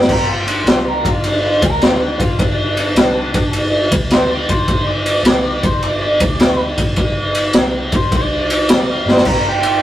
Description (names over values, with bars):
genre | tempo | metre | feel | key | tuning
blues rock power trio and southern rock | 105 BPM | 4/4 | swing 67% on 8ths | G minor | A4 = 440 Hz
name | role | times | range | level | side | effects
vintage muted picked electric bass | bass | 0.0-9.8 s | G1 to D2 | -24 LUFS | equal | none
raw garage drum kit | drums | 0.0-9.7 s | crash cymbal, kick drum, ride cymbal, snare drum | -13 LUFS | equal | none
octave-fuzz lead guitar | melody | 0.1-9.8 s | D4 to F5 | -22 LUFS | equal | distortion
room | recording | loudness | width
light reverb | rough rehearsal-room recording | -13 LUFS | side -13 dB against mid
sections
0.1-9.8 A section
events
lead electric guitar solo 0.1-9.8; drum fill 9.0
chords
0.1 G5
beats
| 0.09 0.67 1.24 1.81 | 2.39 2.96 3.54 4.11 | 4.68 5.26 5.83 6.40 | 6.98 7.55 8.12 8.69 | 9.26